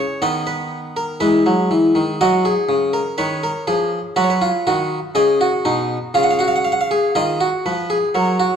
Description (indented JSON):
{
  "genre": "classical, baroque-style 3-part fugue for harpsichord",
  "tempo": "61 BPM",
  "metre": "4/4",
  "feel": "straight",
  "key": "unclear",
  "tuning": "A4 = 436 Hz",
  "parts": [
    { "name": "harpsichord", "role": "solo", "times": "0.0-8.6 s", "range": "B2 to F#5", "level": "-16 LUFS", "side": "equal", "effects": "none" }
  ],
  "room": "wet recital hall reverb, RT60 1.6 s",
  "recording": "worn, warbling old tape, cassette tape, warbly pitch drift",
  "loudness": "-16 LUFS",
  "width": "side -8 dB against mid",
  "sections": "0.0-8.6 A section",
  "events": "none",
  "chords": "0.2 B/D#; 2.2 F#; 4.2 G#m7; 6.2 C#7"
}